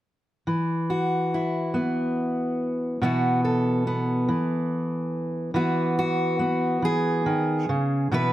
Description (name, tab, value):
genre	folk, solo fingerstyle acoustic guitar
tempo	47 BPM (dotted quarters)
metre	6/8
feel	straight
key	unclear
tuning	A4 = 440 Hz
part	fingerpicked steel-string acoustic guitar	solo	0.5-8.3 s	B2 to B4	-22 LUFS	equal	none
room	light reverb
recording	close, detailed microphones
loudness	-22 LUFS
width	side -14 dB against mid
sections	0.5-5.5 A section; 5.5-8.3 B section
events	none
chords	0.5 Esus2; 3.0 Bsus4; 5.5 Eadd9